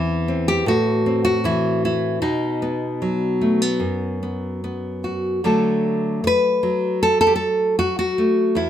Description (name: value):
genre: folk, solo fingerstyle acoustic guitar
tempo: 77 BPM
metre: 4/4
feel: rubato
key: unclear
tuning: A4 = 442 Hz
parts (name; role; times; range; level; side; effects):
- nylon-string guitar; solo; 0.0-8.7 s; E2 to B4; -18 LUFS; equal; none
room: light reverb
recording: none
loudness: -18 LUFS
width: side -10 dB against mid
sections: 0.0-5.4 A section; 5.4-8.7 B section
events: none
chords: 0.0 C/E; 0.7 Am; 2.2 B; 5.4 D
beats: 0.66 1.44 | 2.22 3.00 3.80 4.62 | 5.43 6.23 7.01 7.79 | 8.56